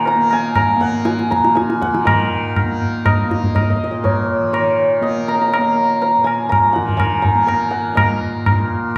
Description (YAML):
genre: indian classical, Hindustani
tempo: 121 BPM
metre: 3/4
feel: straight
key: Bb raga malkauns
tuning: A4 = 440 Hz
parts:
  - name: santur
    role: melody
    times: 0.0-9.0 s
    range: Bb4 to Bb5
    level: -20 LUFS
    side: equal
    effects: none
  - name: tanpura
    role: drone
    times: 0.0-9.0 s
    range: Bb2 to Bb3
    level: -24 LUFS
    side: equal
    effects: none
  - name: tabla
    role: percussion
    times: 0.1-8.6 s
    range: none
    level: -21 LUFS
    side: equal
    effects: none
room: wet recital hall reverb, RT60 1.3 s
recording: recorded in a church or concert hall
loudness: -17 LUFS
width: mono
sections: 0.0-2.1 A section; 2.1-9.0 B section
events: none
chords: none